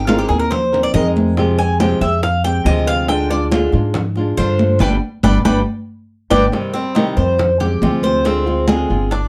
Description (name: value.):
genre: latin, Cuban son and guajira.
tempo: 140 BPM.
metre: 4/4.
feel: straight.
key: unclear.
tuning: A4 = 440 Hz.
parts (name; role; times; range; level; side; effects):
flamenco guitar; accompaniment; 0.0-9.2 s; C3 to Bb4; -22 LUFS; equal; none.
Cuban tres; arpeggios; 0.0-9.3 s; C4 to Ab5; -21 LUFS; equal; none.
upright bass; bass; 0.0-9.3 s; G1 to Ab2; -21 LUFS; equal; none.
bongos; percussion; 0.1-9.3 s; none; -28 LUFS; equal; none.
congas; percussion; 0.1-9.3 s; none; -23 LUFS; equal; none.
room: moderate studio ambience, RT60 0.5 s.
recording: dark, warm production.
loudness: -16 LUFS.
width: mono.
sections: 0.0-6.5 A section; 6.5-9.3 B section.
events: Cuban tres solo 0.0-6.5; band accent 4.8-6.5; drum fill 5.9-6.5.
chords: 0.0 Abadd9; 1.4 Fmadd9; 3.1 Ddim; 4.8 G; 6.5 Cm; 7.4 Fmadd9; 8.3 Dm7b5.